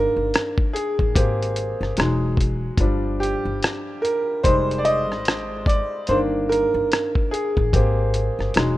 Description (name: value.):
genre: lo-fi hip hop.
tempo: 73 BPM.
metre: 4/4.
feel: swing 59% on 16ths.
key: unclear.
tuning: A4 = 440 Hz.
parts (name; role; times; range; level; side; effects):
bright upright piano; accompaniment; 0.0-8.8 s; Eb3 to Eb5; -22 LUFS; equal; cassette tape.
upright bass; bass; 0.0-8.8 s; E1 to A1; -25 LUFS; equal; none.
lo-fi sampler-style drum kit; drums; 0.3-8.8 s; hi-hat, kick drum, rim click; -21 LUFS; equal; none.
room: little or no reverb.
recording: rough home demo mix.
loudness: -19 LUFS.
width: side -16 dB against mid.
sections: 0.0-8.8 A section.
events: upright piano solo 0.0-8.8.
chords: 0.0 Abmaj7sus2/G; 1.2 Abmaj7; 2.0 Emaj7; 2.8 Gm7; 4.4 Fm7; 6.1 Abmaj7sus2/G; 7.7 Abmaj7.